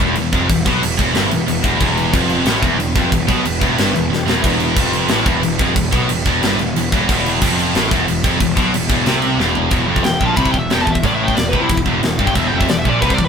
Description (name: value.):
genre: heavy metal.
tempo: 182 BPM.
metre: 4/4.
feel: straight.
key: E minor.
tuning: A4 = 439 Hz.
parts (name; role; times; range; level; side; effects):
dark chamber string section; sustained chords; 0.0-9.7 s; E3 to B4; -29 LUFS; right 1 dB; none.
scooped high-gain guitar; riff; 0.0-13.3 s; E2 to C3; -20 LUFS; right 8 dB; distortion.
sludgy distorted guitar; riff; 0.0-13.3 s; E2 to C3; -24 LUFS; left 1 dB; overdrive.
tight distorted guitar; riff; 0.0-13.3 s; E2 to C3; -21 LUFS; left 8 dB; distortion.
fuzz picked electric bass; bass; 0.0-13.3 s; E1 to C2; -22 LUFS; equal; overdrive.
tight metal drum kit; drums; 0.0-13.3 s; crash cymbal, kick drum, snare drum, toms; -18 LUFS; equal; none.
high-gain lead guitar; melody; 10.0-13.3 s; E4 to B5; -20 LUFS; left 2 dB; distortion.
room: light reverb.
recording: band playing live in one room.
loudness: -13 LUFS.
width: side -6 dB against mid.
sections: 0.0-9.7 A section; 9.7-13.3 B section.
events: half time 0.0-9.7; drum fill 4.1-4.4, 9.4-9.7; lead electric guitar solo 9.7-13.3.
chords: 0.0 Em.